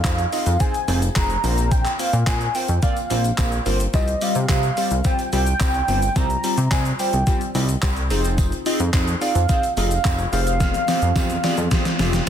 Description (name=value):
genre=dance-pop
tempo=108 BPM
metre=4/4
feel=straight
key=F minor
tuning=A4 = 440 Hz
part: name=warm velvety synth lead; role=melody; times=0.0-12.2 s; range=Eb5 to Bb5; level=-24 LUFS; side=right 1 dB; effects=chorus, ping-pong delay
part: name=glassy digital keys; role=accompaniment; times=0.0-12.3 s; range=G3 to Eb5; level=-26 LUFS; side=left 1 dB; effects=chorus, phaser, sidechain pumping
part: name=chorused synth bass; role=bass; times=0.0-12.2 s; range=F1 to C3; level=-21 LUFS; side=equal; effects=sidechain pumping
part: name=gated 80s digital drum machine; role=drums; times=0.0-12.3 s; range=handclaps, hi-hat, kick drum, shaker, snare drum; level=-22 LUFS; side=equal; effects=gated reverb, gated reverb snare, overdrive
part: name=tambourine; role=percussion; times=0.0-12.3 s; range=none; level=-40 LUFS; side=right 8 dB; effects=none
room=little or no reverb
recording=dense, heavily limited modern master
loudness=-18 LUFS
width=side -9 dB against mid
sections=0.0-12.3 A section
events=drum fill 10.6-12.3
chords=0.0 Fm7; 1.4 Bbsus2; 3.9 Csus4; 8.1 Fm7; 10.3 Fmadd9